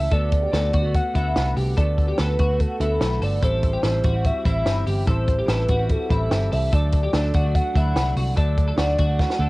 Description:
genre	jangly indie pop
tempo	145 BPM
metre	4/4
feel	straight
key	unclear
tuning	A4 = 439 Hz
part	warbly nostalgic lead	melody	0.0-9.5 s	A4 to F#5	-26 LUFS	equal	chorus, cassette tape
part	direct-recorded clean electric guitar	accompaniment	0.0-9.5 s	D3 to F#4	-30 LUFS	right 2 dB	cassette tape
part	twelve-string electric guitar	arpeggios	0.0-9.5 s	E4 to A4	-30 LUFS	left 2 dB	ensemble chorus, cassette tape
part	vintage muted picked electric bass	bass	0.0-9.5 s	G1 to D2	-22 LUFS	equal	none
part	compact cocktail drum kit	drums	0.1-9.4 s	hi-hat, kick drum, snare drum	-23 LUFS	equal	cassette tape
room	little or no reverb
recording	home recording on cassette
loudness	-18 LUFS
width	side -21 dB against mid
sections	0.0-9.5 A section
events	drum fill 9.2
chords	0.1 D6; 3.4 Am7; 6.7 D

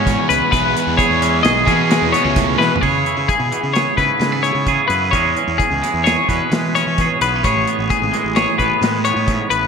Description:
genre	math rock and midwest emo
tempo	130 BPM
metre	5/4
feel	straight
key	E major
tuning	A4 = 440 Hz
part	twangy electric guitar	accompaniment	0.0-9.7 s	E2 to G#4	-20 LUFS	right 8 dB	none
part	twelve-string electric guitar	arpeggios	0.0-9.7 s	G#4 to D#5	-18 LUFS	left 6 dB	none
part	biting overdriven guitar	riff	0.0-2.8 s	E3 to G#4	-21 LUFS	right 1 dB	none
part	fuzz fingered electric bass	bass	0.0-9.7 s	G#1 to E3	-22 LUFS	equal	overdrive
part	modern studio drum kit	drums	0.1-9.6 s	crash cymbal, hi-hat, kick drum, snare drum, toms	-22 LUFS	equal	none
room	moderate lush hall reverb, RT60 1.9 s, small room ambience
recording	bright 1980s-style digital production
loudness	-14 LUFS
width	side -6 dB against mid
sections	0.0-2.8 A section; 2.8-9.7 B section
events	drum fill 2.6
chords	0.0 E6; 2.8 C#m7; 5.1 E6; 7.4 Amaj9

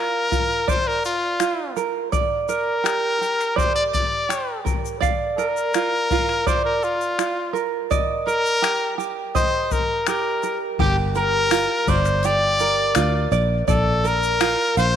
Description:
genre	acoustic pop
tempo	83 BPM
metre	4/4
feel	straight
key	unclear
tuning	A4 = 440 Hz
part	brilliant trumpet	melody	0.0-15.0 s	F4 to D5	-22 LUFS	left 2 dB	slapback echo
part	tenor ukulele	accompaniment	0.0-15.0 s	F4 to F5	-24 LUFS	right 7 dB	none
part	jazz brush drum kit	drums	0.3-14.9 s	crash cymbal, finger snaps, kick drum, shaker	-26 LUFS	left 4 dB	none
part	fingered electric bass	bass	10.8-15.0 s	G1 to D2	-22 LUFS	left 2 dB	none
part	tambourine	percussion	11.2-14.9 s	none	-38 LUFS	left 18 dB	none
room	light reverb, studio ambience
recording	1960s-style stereo with parts hard left and right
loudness	-18 LUFS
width	side -9 dB against mid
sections	0.0-10.8 A section; 10.8-15.0 B section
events	none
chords	0.0 Bb; 2.1 Gm; 5.0 Bb; 7.9 Ebmaj7; 10.8 Gm7; 13.3 Bb

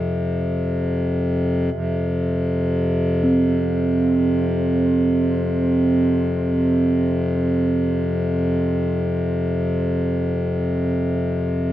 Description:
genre	world meditative, free-time meditation music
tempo	free time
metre	none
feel	none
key	unclear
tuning	A4 = 440 Hz
part	pedal harmonium	drone	0.0-11.7 s	F2 to C3	-20 LUFS	left 1 dB	none
part	bronze singing bowl	texture	3.2-11.3 s	C4	-22 LUFS	right 3 dB	shimmer reverb
room	wet plate reverb, RT60 2.7 s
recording	none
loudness	-18 LUFS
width	side -13 dB against mid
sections	0.0-11.7 A section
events	none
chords	none

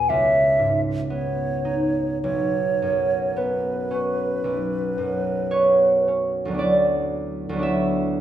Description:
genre	classical, impressionist duo for flute and harp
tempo	50-60 BPM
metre	4/4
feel	rubato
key	B major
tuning	A4 = 439 Hz
part	mellow hollow silver concert flute	melody	0.0-6.1 s	B4 to G#5	-23 LUFS	equal	none
part	concert harp	accompaniment	0.0-8.2 s	B1 to E5	-21 LUFS	right 1 dB	none
room	wet recital hall reverb, RT60 1.5 s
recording	minimal, uncompressed stereo recording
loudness	-20 LUFS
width	side -11 dB against mid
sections	0.0-6.6 A section; 6.6-8.2 B section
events	none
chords	0.1 C#sus2; 2.2 Badd9; 6.6 D69

